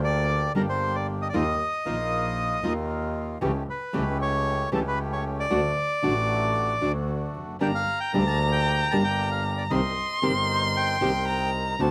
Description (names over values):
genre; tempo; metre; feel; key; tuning
tango; 115 BPM; 4/4; rubato; G minor; A4 = 440 Hz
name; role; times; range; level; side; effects
bandoneon; melody; 0.0-11.5 s; A4 to A5; -30 LUFS; equal; none
bandoneon; stabs; 0.0-11.9 s; A3 to Bb4; -36 LUFS; equal; slapback echo
clear double bass; bass; 0.0-11.9 s; F1 to Eb2; -31 LUFS; equal; none
nylon-string guitar; accompaniment; 0.5-11.9 s; C3 to G4; -29 LUFS; equal; none
dark violin; second line; 7.6-11.9 s; A5 to C6; -29 LUFS; equal; none
room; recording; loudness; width
little or no reverb; recorded outdoors, with no room sound; -26 LUFS; mono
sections
0.0-11.9 A section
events
none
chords
0.0 Gm; 1.3 Ebsus2; 3.4 A7/C#; 5.5 D; 7.6 Gm; 9.7 Cm7